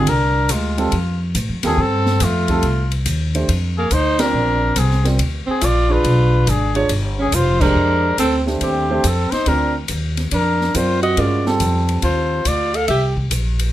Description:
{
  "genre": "jazz, small-group swing and bop",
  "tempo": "140 BPM",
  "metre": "4/4",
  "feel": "swing 67% on 8ths",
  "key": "F mixolydian",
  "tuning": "A4 = 442 Hz",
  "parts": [
    { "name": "trumpet with bucket mute", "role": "melody", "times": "0.0-13.1 s", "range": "F4 to F5", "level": "-21 LUFS", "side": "left 3 dB", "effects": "none" },
    { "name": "breathy alto saxophone", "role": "second line", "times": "0.0-13.2 s", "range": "Ab3 to A4", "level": "-22 LUFS", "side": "right 3 dB", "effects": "none" },
    { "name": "dark baby grand piano", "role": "accompaniment", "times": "0.0-12.4 s", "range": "G3 to D5", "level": "-22 LUFS", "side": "right 3 dB", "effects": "none" },
    { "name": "upright bass", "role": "bass", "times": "0.0-13.7 s", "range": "F1 to A2", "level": "-19 LUFS", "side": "equal", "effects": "none" },
    { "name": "open jazz drum kit", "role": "drums", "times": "0.1-13.7 s", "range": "crash cymbal, hi-hat, kick drum, ride cymbal, snare drum", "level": "-26 LUFS", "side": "left 2 dB", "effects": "none" }
  ],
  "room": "light reverb",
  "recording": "none",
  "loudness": "-15 LUFS",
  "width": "side -13 dB against mid",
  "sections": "0.0-13.7 A section",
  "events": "band accent 4.1, 7.5",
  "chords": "0.0 Bb13; 0.9 Fadd9; 2.6 Cm; 3.5 F5; 4.3 Bb9; 6.0 Bdim7; 7.8 F13; 9.5 D7alt; 11.2 Gm7; 12.9 C5"
}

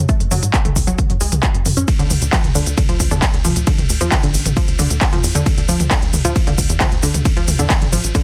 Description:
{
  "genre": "driving peak-time techno",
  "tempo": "134 BPM",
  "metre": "4/4",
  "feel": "straight",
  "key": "unclear",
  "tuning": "A4 = 439 Hz",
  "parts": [
    { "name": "tight sequencer bass", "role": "bass", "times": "0.0-8.1 s", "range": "A1 to G#2", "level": "-23 LUFS", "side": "equal", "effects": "sidechain pumping" },
    { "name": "unison pluck", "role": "riff", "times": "0.1-8.2 s", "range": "D3 to F#4", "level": "-26 LUFS", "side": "equal", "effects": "sidechain pumping, digital delay" },
    { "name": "electronic kick drum", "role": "drums", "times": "0.1-8.2 s", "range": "none", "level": "-19 LUFS", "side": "equal", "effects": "overdrive" },
    { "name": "techno drum kit", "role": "drums", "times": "0.1-8.2 s", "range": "handclaps, hi-hat, ride cymbal, shaker, toms", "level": "-22 LUFS", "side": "equal", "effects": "overdrive" }
  ],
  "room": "digital ambience",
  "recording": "dense, heavily limited modern master",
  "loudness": "-16 LUFS",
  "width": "mono",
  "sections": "0.0-8.2 A section",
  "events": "none",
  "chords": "0.0 F#5; 1.9 Dm"
}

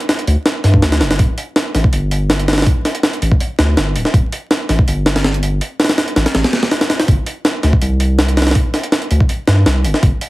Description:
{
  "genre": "drum and bass, jungle",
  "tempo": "163 BPM",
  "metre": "4/4",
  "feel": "straight",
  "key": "unclear",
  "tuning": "A4 = 440 Hz",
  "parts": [
    { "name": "jungle sampler-style drum kit", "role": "drums", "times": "0.0-10.3 s", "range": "hi-hat, kick drum, snare drum", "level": "-14 LUFS", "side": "equal", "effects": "none" },
    { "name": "saturated sub bass", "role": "bass", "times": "0.3-10.1 s", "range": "D1 to G2", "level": "-14 LUFS", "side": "equal", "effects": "none" }
  ],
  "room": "light reverb",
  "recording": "heavily compressed radio sound, vinyl crackle",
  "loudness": "-12 LUFS",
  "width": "side -18 dB against mid",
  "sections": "0.0-10.3 A section",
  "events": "none",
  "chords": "none"
}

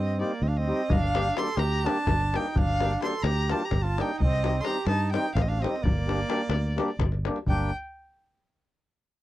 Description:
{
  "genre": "balkan folk, Balkan wedding band",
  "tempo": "256 BPM (eighths)",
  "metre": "7/8",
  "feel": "straight",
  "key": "G minor",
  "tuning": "A4 = 440 Hz",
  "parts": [
    { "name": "rich violin", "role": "melody", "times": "0.0-7.7 s", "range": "D5 to C6", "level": "-31 LUFS", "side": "equal", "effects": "none" },
    { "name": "warm trumpet", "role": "second line", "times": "0.0-7.7 s", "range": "Bb3 to A4", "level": "-33 LUFS", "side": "right 6 dB", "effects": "none" },
    { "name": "fingered electric bass", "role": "bass", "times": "0.0-7.7 s", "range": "G1 to G2", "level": "-27 LUFS", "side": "equal", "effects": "none" },
    { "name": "mellow accordion", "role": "accompaniment", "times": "0.2-7.7 s", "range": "G3 to G4", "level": "-30 LUFS", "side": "left 1 dB", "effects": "none" },
    { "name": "davul", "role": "percussion", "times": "0.9-7.7 s", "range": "none", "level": "-29 LUFS", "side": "left 2 dB", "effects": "none" }
  ],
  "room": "little or no reverb",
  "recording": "dry, close 1970s-style studio recording",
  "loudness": "-24 LUFS",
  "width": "side -15 dB against mid",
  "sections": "0.0-7.5 A section; 7.5-9.1 B section",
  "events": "none",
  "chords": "0.0 Cm; 0.9 Gm; 4.2 Cm; 5.8 Gm"
}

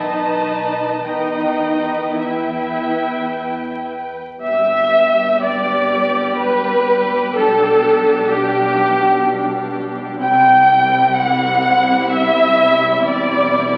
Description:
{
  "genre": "classical, slow romantic movement for string orchestra",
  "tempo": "52-65 BPM",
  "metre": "3/4",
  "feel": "rubato",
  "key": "G major from 4.4 s",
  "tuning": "A4 = 437 Hz",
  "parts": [
    { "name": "muted chamber violin section", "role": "melody", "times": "0.0-13.8 s", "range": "E4 to E5", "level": "-29 LUFS", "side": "equal", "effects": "none" },
    { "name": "muted chamber violin section", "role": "second line", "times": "0.0-13.8 s", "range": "G4 to A5", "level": "-17 LUFS", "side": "equal", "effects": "none" },
    { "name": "muted chamber viola section", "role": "accompaniment", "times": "0.0-13.8 s", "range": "G3 to E4", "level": "-26 LUFS", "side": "equal", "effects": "none" },
    { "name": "muted chamber double bass section", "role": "bass", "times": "0.0-13.8 s", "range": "E1 to E2", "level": "-31 LUFS", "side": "equal", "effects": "none" },
    { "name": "muted studio cello section", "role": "bass", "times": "0.0-13.8 s", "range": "E2 to E3", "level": "-32 LUFS", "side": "equal", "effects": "none" }
  ],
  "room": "wet recital hall reverb, RT60 1.3 s",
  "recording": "very old 78 rpm record, vinyl crackle",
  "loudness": "-16 LUFS",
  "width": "mono",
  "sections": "0.0-4.4 A section; 4.4-13.8 B section",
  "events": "none",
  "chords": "0.0 B7; 1.1 Em; 4.4 G; 7.4 G/B; 10.2 C; 13.0 C/E"
}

